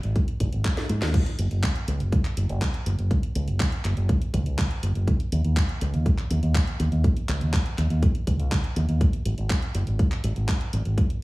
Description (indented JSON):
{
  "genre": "italo disco",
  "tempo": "122 BPM",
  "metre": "4/4",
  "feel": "straight",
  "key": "unclear",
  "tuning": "A4 = 445 Hz",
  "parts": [
    { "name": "fingered electric bass with an envelope filter", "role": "bass", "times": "0.0-11.0 s", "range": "Gb1 to Ab2", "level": "-25 LUFS", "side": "equal", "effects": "tube saturation, digital delay" },
    { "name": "house drum kit", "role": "drums", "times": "0.0-11.2 s", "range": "crash cymbal, handclaps, hi-hat, snare drum", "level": "-33 LUFS", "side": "equal", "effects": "gated reverb" },
    { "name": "electronic kick drum", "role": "drums", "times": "0.2-11.1 s", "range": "none", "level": "-22 LUFS", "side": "equal", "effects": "none" }
  ],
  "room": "little or no reverb",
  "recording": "small room reverb",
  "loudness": "-22 LUFS",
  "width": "side -20 dB against mid",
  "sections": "0.0-1.1 A section; 1.1-11.2 B section",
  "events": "drum fill 0.8-1.1",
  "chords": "none"
}